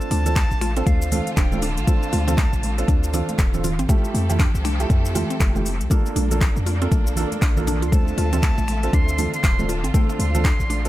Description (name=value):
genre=afro house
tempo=119 BPM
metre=4/4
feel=swing 60% on 16ths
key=D minor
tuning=A4 = 440 Hz
part: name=breathy bright jazz flute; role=melody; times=0.0-3.6, 7.9-10.9 s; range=F5 to C6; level=-30 LUFS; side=equal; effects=tape echo
part: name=rich studio string section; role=sustained chords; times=0.0-10.9 s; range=D3 to F5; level=-33 LUFS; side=equal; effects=vintage 12-bit sampler grit, sidechain pumping
part: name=felt-muted upright piano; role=stabs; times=0.0-10.9 s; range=A3 to A4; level=-29 LUFS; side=right 4 dB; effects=sidechain pumping, analog delay
part: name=deep house drum kit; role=drums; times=0.0-10.9 s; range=finger snaps, handclaps, hi-hat, shaker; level=-30 LUFS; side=left 1 dB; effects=analog delay
part: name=mallet-like synth pluck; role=arpeggios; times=0.1-10.8 s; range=A3 to F4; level=-31 LUFS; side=equal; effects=chorus, sidechain pumping, tape echo
part: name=warm 808-style bass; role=bass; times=0.1-10.9 s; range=D1 to F2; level=-23 LUFS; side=equal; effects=sidechain pumping
part: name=congas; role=percussion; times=0.1-10.8 s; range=none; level=-29 LUFS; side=right 1 dB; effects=none
part: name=electronic kick drum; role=drums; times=0.4-10.6 s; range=none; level=-19 LUFS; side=equal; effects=none
room=studio reverb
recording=echo-heavy mix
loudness=-18 LUFS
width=side -15 dB against mid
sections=0.0-10.9 A section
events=none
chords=0.0 Dm7; 3.9 Fmaj9; 5.9 Bbmaj7; 7.9 Dm7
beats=0.36 0.87 1.37 | 1.88 2.38 2.88 3.39 | 3.89 4.40 4.90 5.41 | 5.91 6.41 6.92 7.42 | 7.93 8.43 8.93 9.44 | 9.94 10.45